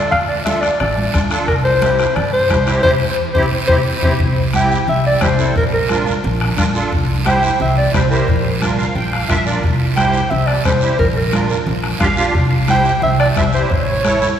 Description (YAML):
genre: latin, cumbia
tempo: 177 BPM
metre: 4/4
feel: straight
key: unclear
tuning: A4 = 438 Hz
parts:
  - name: breathy clarinet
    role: melody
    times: 0.0-14.4 s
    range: Bb4 to G5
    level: -17 LUFS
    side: equal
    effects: none
  - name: musette accordion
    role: accompaniment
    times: 0.0-14.3 s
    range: C4 to G5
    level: -21 LUFS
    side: right 2 dB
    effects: none
  - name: upright bass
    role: bass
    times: 0.0-14.3 s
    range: A1 to G2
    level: -19 LUFS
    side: equal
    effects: none
  - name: bombo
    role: percussion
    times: 0.1-14.2 s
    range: none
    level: -21 LUFS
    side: left 1 dB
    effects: none
  - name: congas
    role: percussion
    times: 0.1-14.4 s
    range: none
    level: -25 LUFS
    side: equal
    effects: none
  - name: guiro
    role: percussion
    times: 0.1-14.4 s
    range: none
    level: -28 LUFS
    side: right 4 dB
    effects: none
room: wet church reverb, RT60 2.8 s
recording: recorded in a church or concert hall, lossy compression artefacts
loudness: -13 LUFS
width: side -9 dB against mid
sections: 0.0-4.2 A section; 4.2-14.4 B section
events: drum fill 2.8-4.2; band accent 2.8-4.2; accordion fill 8.6-9.6, 11.8-12.4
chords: 0.0 Dm; 1.5 C; 5.6 Bb; 6.9 C; 8.3 Bb; 9.6 C; 11.0 Bb; 12.4 C; 13.7 A